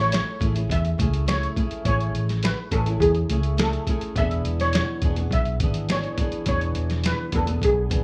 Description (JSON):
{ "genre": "indie pop, bedroom pop", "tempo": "104 BPM", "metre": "4/4", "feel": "straight", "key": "A major", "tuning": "A4 = 441 Hz", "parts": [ { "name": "steel pan", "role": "melody", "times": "0.0-8.0 s", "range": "G#4 to E5", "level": "-29 LUFS", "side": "equal", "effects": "ensemble chorus" }, { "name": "flamenco guitar", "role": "accompaniment", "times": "0.0-8.0 s", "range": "E3 to G#4", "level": "-32 LUFS", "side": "equal", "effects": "subtle chorus, warbly pitch drift" }, { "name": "vintage muted fingered electric bass", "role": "bass", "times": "0.0-8.0 s", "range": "E1 to E2", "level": "-27 LUFS", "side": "equal", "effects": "none" }, { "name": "lo-fi sampler-style drum kit", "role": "drums", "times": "0.1-8.0 s", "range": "hi-hat, kick drum, snare drum", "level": "-28 LUFS", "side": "equal", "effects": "none" } ], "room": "little or no reverb", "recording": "none", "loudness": "-23 LUFS", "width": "mono", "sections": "0.0-8.0 A section", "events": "none", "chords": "0.0 Amaj7; 4.2 E7", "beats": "0.12 0.70 1.27 | 1.85 2.43 3.00 3.58 | 4.16 4.74 5.31 5.89 | 6.47 7.04 7.62" }